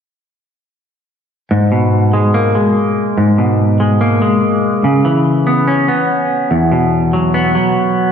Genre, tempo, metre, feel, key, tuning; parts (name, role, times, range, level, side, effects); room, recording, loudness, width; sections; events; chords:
hip hop; 144 BPM; 4/4; half-time; G# minor; A4 = 439 Hz
semi-hollow electric guitar; accompaniment; 1.5-8.1 s; E2 to C#4; -11 LUFS; equal; lush chorus
wet church reverb, RT60 2.5 s; dreamy mix soaked in reverb; -11 LUFS; side -7 dB against mid
1.5-8.1 A section
1.5 G#madd9; 4.8 C#m7; 6.5 Esus2